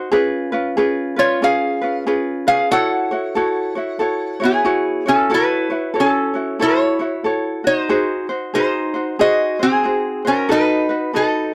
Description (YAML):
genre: Hawaiian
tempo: 93 BPM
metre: 4/4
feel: swing 62% on 8ths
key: F# minor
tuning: A4 = 440 Hz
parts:
  - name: ukulele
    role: accompaniment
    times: 0.0-11.5 s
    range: C#4 to C#5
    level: -22 LUFS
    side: equal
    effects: none
  - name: lap resonator guitar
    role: melody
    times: 1.2-11.5 s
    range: B3 to F#5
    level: -19 LUFS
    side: equal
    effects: none
room: light reverb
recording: none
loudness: -18 LUFS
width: mono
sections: 0.0-5.3 A section; 5.3-11.5 B section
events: none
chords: 0.1 C#7; 2.7 F#m7; 7.9 G#7; 10.5 B7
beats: | 0.11 0.76 1.41 2.06 | 2.71 3.35 4.00 4.65 | 5.30 5.94 6.59 7.24 | 7.89 8.54 9.18 9.83 | 10.48 11.13